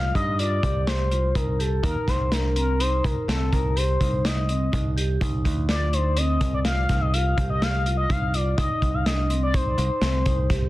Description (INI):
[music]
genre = progressive instrumental, band music in an uneven meter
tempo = 125 BPM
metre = 7/4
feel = straight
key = C dorian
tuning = A4 = 441 Hz
[part]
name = expressive synth lead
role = melody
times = 0.0-10.7 s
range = A4 to F5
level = -27 LUFS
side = left 3 dB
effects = chorus, digital delay
[part]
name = vibraphone with medium hard mallets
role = arpeggios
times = 0.0-10.7 s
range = C4 to G4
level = -32 LUFS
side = right 2 dB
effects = none
[part]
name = picked electric bass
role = bass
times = 0.0-10.7 s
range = C2 to G2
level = -24 LUFS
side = equal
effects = none
[part]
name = vintage drum kit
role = drums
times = 0.2-10.6 s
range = hi-hat, kick drum, snare drum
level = -26 LUFS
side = equal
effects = soft clipping on kick
[sound]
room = little or no reverb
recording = dense, heavily limited modern master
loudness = -21 LUFS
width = side -17 dB against mid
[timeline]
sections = 0.0-10.7 A section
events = none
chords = 0.0 Cm7; 8.6 Cm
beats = 0.40 0.88 1.36 | 1.84 2.32 2.80 3.28 3.77 4.25 4.73 | 5.21 5.69 6.17 6.65 7.13 7.62 8.10 | 8.58 9.06 9.54 10.02 10.50